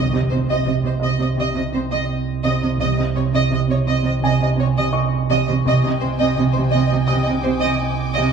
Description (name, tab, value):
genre	cinematic, suspense film score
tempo	84 BPM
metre	4/4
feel	straight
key	C phrygian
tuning	A4 = 440 Hz
part	clear studio violin section	melody	0.0-8.3 s	C5 to Eb5	-23 LUFS	right 1 dB	none
part	concert harp	riff	0.0-8.3 s	C3 to C4	-22 LUFS	right 2 dB	none
part	warm studio double bass section	bass	0.0-5.8 s	C2	-25 LUFS	right 5 dB	none
part	sub bass with octave	drone	0.0-8.3 s	C2	-26 LUFS	right 4 dB	none
part	impact	sound effects	0.0-2.8 s	none	-30 LUFS	right 2 dB	none
part	warm studio cello section	bass	0.1-8.2 s	C3	-22 LUFS	right 6 dB	none
part	bright baby grand piano	texture	1.0-8.3 s	Eb5 to Eb6	-30 LUFS	equal	none
part	rich studio violin section	texture	5.6-8.3 s	G5 to D6	-29 LUFS	left 4 dB	none
room	wet concert hall reverb, RT60 1.8 s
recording	none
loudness	-17 LUFS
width	side -6 dB against mid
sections	0.0-8.3 A section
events	impact 0.0-2.8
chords	0.0 Cm